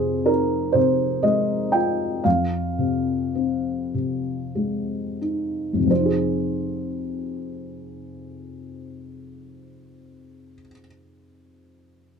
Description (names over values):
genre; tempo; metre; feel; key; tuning
classical, lyrical solo piano; 29-43 BPM (dotted quarters); 6/8; rubato; F minor; A4 = 440 Hz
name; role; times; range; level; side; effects
felt-muted upright piano; solo; 0.0-12.2 s; F2 to G5; -22 LUFS; equal; none
room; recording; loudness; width
moderate studio ambience, RT60 0.5 s; dark, warm production; -21 LUFS; side -6 dB against mid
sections
0.0-5.9 A section; 5.9-9.9 B section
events
slowing down 0.0-5.9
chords
0.0 Fm7